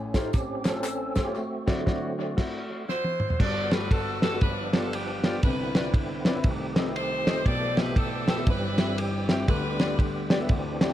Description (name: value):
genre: uptempo gospel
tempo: 118 BPM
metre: 4/4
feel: swing 62% on 8ths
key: G major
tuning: A4 = 440 Hz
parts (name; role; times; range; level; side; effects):
- warm baby grand piano; accompaniment; 0.0-10.9 s; G1 to G5; -31 LUFS; left 3 dB; dub echo
- tonewheel organ; sustained chords; 0.0-10.9 s; G2 to A4; -32 LUFS; right 2 dB; slow rotary speaker, overdrive, chorus vibrato
- warm soul drum kit; drums; 0.1-10.9 s; crash cymbal, hi-hat, kick drum, ride cymbal, snare drum, toms; -26 LUFS; equal; dub echo
- tambourine and handclaps; percussion; 0.1-1.3 s; none; -43 LUFS; left 1 dB; dub echo
- edgy saxophone section; melody; 2.9-10.5 s; D4 to D5; -31 LUFS; equal; dub echo
room: light reverb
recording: echo-heavy mix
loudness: -24 LUFS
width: side -12 dB against mid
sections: 0.0-3.4 A section; 3.4-10.9 B section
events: tonewheel organ solo 0.0-3.4; band accent 1.4-3.4; drum fill 2.9-3.4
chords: 0.0 A7alt; 1.4 D9; 3.4 Gmaj9; 4.4 G7; 5.4 Cmaj9; 6.4 Cm6; 7.5 G69/B; 8.5 C/G; 9.5 G/D